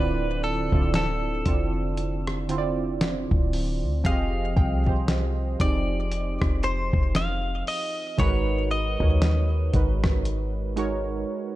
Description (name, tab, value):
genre	contemporary R&B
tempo	58 BPM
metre	4/4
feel	swing 58% on 16ths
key	unclear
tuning	A4 = 441 Hz
part	direct-recorded clean electric guitar	melody	0.0-11.6 s	A4 to F5	-31 LUFS	left 2 dB	digital delay
part	warm analog keys	accompaniment	0.0-11.6 s	D3 to Eb5	-29 LUFS	right 4 dB	chorus
part	warm 808-style bass	bass	0.0-11.2 s	D1 to Eb2	-26 LUFS	equal	none
part	dusty soul sampler-style drum kit	drums	0.7-11.0 s	hi-hat, kick drum, rim click, snare drum	-26 LUFS	equal	none
part	glassy wavetable pluck	texture	4.6-8.0 s	G5 to C6	-38 LUFS	equal	chorus, digital delay
room	digital ambience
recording	dark, warm production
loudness	-22 LUFS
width	side -15 dB against mid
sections	0.0-11.6 A section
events	break 11.3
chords	0.0 Dm9; 4.0 Fm9; 8.2 Abm9